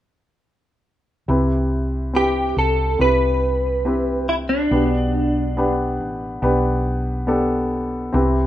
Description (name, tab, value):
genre	pop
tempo	70 BPM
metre	4/4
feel	straight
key	C major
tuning	A4 = 442 Hz
part	warm grand piano	accompaniment	1.3-8.5 s	B2 to B4	-21 LUFS	left 1 dB	none
part	hollow-body short-scale fingered electric bass	bass	1.3-8.5 s	A1 to C2	-23 LUFS	equal	none
part	direct-recorded clean electric guitar	melody	2.2-5.7 s	D4 to B4	-20 LUFS	right 1 dB	analog chorus
room	moderate studio reverb, RT60 0.6 s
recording	rough home demo mix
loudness	-18 LUFS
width	side -13 dB against mid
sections	1.3-8.5 A section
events	none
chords	1.3 Cmaj7; 4.7 G